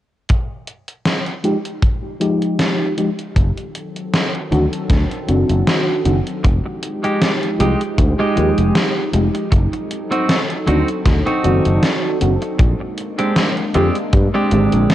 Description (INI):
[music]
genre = vaporwave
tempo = 78 BPM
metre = 4/4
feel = swing 54% on 16ths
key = F dorian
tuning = A4 = 440 Hz
[part]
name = gated 80s digital drum machine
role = drums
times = 0.3-14.9 s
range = hi-hat, snare drum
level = -20 LUFS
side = equal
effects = gated reverb, gated reverb snare
[part]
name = kick drum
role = drums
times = 0.3-14.3 s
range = none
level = -15 LUFS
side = equal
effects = none
[part]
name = mellow FM electric piano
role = accompaniment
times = 1.4-14.9 s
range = D3 to D5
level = -21 LUFS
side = equal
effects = lush chorus, vintage 12-bit sampler grit, analog delay
[part]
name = warbly tape-like pad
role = sustained chords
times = 3.7-14.9 s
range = Eb3 to A4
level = -25 LUFS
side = equal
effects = chorus, built-in reverb
[part]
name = sustaining fretless electric bass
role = bass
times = 3.4-14.8 s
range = F1 to G2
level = -17 LUFS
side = equal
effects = tube saturation, analog chorus
[part]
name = clean electric guitar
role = riff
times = 6.4-14.9 s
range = Ab3 to G4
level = -21 LUFS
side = right 1 dB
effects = wide subtle chorus, analog delay
[sound]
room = light reverb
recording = worn, warbling old tape, cassette tape, warbly pitch drift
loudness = -15 LUFS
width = side -13 dB against mid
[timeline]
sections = 0.3-6.4 A section; 6.4-14.9 B section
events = none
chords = 0.3 Fm9; 3.4 D7b9/F#; 6.4 Fm9; 9.5 D7b9/F#; 12.6 Bb13